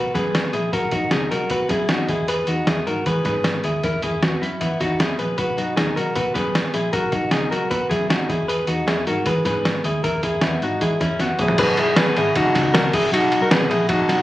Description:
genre	jangly indie pop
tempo	155 BPM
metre	4/4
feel	straight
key	B major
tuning	A4 = 439 Hz
part	direct-recorded clean electric guitar	arpeggios	0.0-14.2 s	B3 to B4	-21 LUFS	left 1 dB	none
part	vintage muted fingered electric bass	bass	0.0-14.2 s	F#1 to E3	-26 LUFS	equal	none
part	lo-fi sampler-style drum kit	drums	0.1-14.2 s	crash cymbal, hi-hat, kick drum, ride cymbal, snare drum, toms	-22 LUFS	equal	none
room	light reverb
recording	recorded on a phone in the room, club reverb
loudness	-18 LUFS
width	side -15 dB against mid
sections	0.0-11.6 A section; 11.6-14.2 B section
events	drum fill 11.2-11.6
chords	0.0 Bmaj7; 11.6 B6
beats	0.34 | 0.73 1.12 1.51 1.90 | 2.29 2.67 3.06 3.45 | 3.84 4.22 4.61 5.00 | 5.39 5.78 6.16 6.55 | 6.94 7.33 7.71 8.10 | 8.49 8.88 9.26 9.65 | 10.04 10.43 10.81 11.20 | 11.58 11.97 12.35 12.74 | 13.12 13.51 13.89

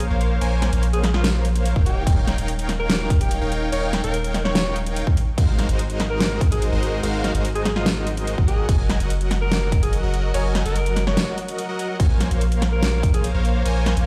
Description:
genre	future bass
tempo	145 BPM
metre	4/4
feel	half-time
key	Bb minor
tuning	A4 = 440 Hz
part	warm alto saxophone	melody	0.0-13.3 s	F4 to Db5	-32 LUFS	equal	sidechain pumping, digital delay
part	big bright polysynth	riff	0.0-14.1 s	Gb3 to Ab5	-29 LUFS	equal	chorus, sidechain pumping
part	saturated sub bass	bass	0.0-14.1 s	Eb1 to Bb1	-25 LUFS	equal	sidechain pumping
part	dubstep drum kit	drums	0.0-14.0 s	crash cymbal, hi-hat, snare drum	-28 LUFS	equal	none
part	electronic kick drum	drums	1.8-13.1 s	none	-21 LUFS	equal	none
room	little or no reverb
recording	played on a big sound system in a bare room, stone room reverb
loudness	-21 LUFS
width	mono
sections	0.0-14.1 A section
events	break 11.2-12.0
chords	0.0 Bbm7; 1.9 Eb7; 5.2 Ab13; 8.5 Gb6; 12.0 Bbm7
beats	0.00 | 0.41 0.83 1.24 1.65 | 2.07 2.48 2.90 3.31 | 3.72 4.14 4.55 4.96 | 5.38 5.79 6.21 6.62 | 7.03 7.45 7.86 8.27 | 8.69 9.10 9.52 9.93 | 10.34 10.76 11.17 11.58 | 12.00 12.41 12.83 13.24 | 13.65

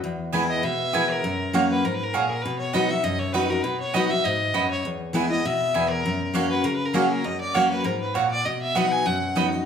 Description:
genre	bluegrass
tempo	200 BPM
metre	4/4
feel	swing 54% on 8ths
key	B major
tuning	A4 = 441 Hz
part	picked steel-string acoustic guitar	accompaniment	0.0-9.7 s	E2 to F#4	-25 LUFS	left 2 dB	none
part	mandolin	stabs	0.3-9.5 s	A#3 to B5	-26 LUFS	right 5 dB	none
part	clear fiddle	melody	0.5-9.4 s	G#4 to G#5	-26 LUFS	left 1 dB	none
room	wet large studio reverb, RT60 1.3 s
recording	band playing live in one room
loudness	-21 LUFS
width	side -7 dB against mid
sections	0.0-9.7 A section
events	none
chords	0.0 E; 1.2 F#; 2.4 B; 4.8 E; 6.0 F#; 8.5 B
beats	| 0.03 0.34 0.64 0.94 | 1.24 1.54 1.84 2.14 | 2.44 2.74 3.04 3.34 | 3.64 3.94 4.25 4.54 | 4.85 5.15 5.45 5.75 | 6.05 6.35 6.65 6.95 | 7.25 7.55 7.85 8.15 | 8.45 8.75 9.05 9.36

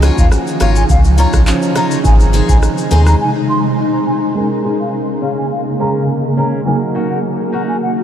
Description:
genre	dancehall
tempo	104 BPM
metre	4/4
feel	straight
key	Bb minor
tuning	A4 = 439 Hz
part	warm grand piano	accompaniment	0.0-8.0 s	Eb3 to Eb5	-21 LUFS	right 4 dB	analog chorus, sidechain pumping, low-pass filter
part	granular cloud pad	sustained chords	0.0-8.0 s	C3 to Ab4	-17 LUFS	equal	built-in reverb, sidechain pumping, low-pass filter
part	picked swing-style acoustic guitar	arpeggios	0.0-7.8 s	Db4 to Db5	-23 LUFS	left 4 dB	low-pass filter, diffuse ambient delay
part	sub bass with octave	bass	0.0-3.1 s	Ab1 to Eb2	-11 LUFS	equal	none
part	booming analog drum machine	drums	0.0-3.2 s	handclaps, hi-hat, kick drum, rim click, shaker	-15 LUFS	equal	none
part	tube shaker and timbales	percussion	0.0-3.2 s	none	-30 LUFS	left 6 dB	none
part	mellow hollow wooden flute	melody	0.2-7.9 s	F5 to C6	-21 LUFS	equal	low-pass filter, diffuse ambient delay
room	moderate huge ambient reverb, RT60 9.1 s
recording	dreamy mix soaked in reverb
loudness	-12 LUFS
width	side -10 dB against mid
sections	0.0-4.4 A section; 4.4-8.0 B section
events	break 3.2-4.4; filter sweep 4.4-8.0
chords	0.0 Dbadd9; 2.0 Ab; 4.4 Bbm7; 6.7 Ebm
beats	0.32 0.89 1.47 | 2.05 2.62 3.20 3.78 | 4.36 4.93 5.51 6.09 | 6.66 7.24 7.82

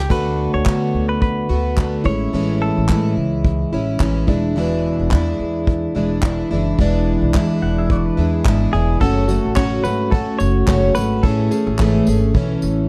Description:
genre	acoustic pop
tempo	108 BPM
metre	4/4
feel	swing 55% on 16ths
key	A major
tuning	A4 = 440 Hz
part	direct-recorded clean electric guitar	melody	0.0-3.1, 8.7-12.9 s	G4 to C#5	-28 LUFS	equal	none
part	picked plugged-in twelve-string acoustic guitar	accompaniment	0.0-12.9 s	E2 to G#4	-21 LUFS	equal	none
part	upright bass	bass	0.0-12.9 s	E1 to D3	-23 LUFS	equal	none
part	soft brush drum kit	drums	0.1-12.8 s	crash cymbal, handclaps, kick drum, tambourine	-21 LUFS	equal	none
part	pedal steel guitar	second line	7.6-9.0 s	B3 to F#5	-32 LUFS	equal	slapback echo
room	light reverb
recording	dark, warm production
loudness	-18 LUFS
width	mono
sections	0.1-9.0 A section; 9.0-12.9 B section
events	none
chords	0.1 D6; 2.1 Amaj7; 4.3 E7; 9.0 F#m; 11.2 Amaj7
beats	| 0.11 0.66 1.22 1.78 | 2.33 2.89 3.45 4.00 | 4.56 5.12 5.67 6.23 | 6.79 7.34 7.90 8.46 | 9.01 9.57 10.12 10.68 | 11.24 11.79 12.35

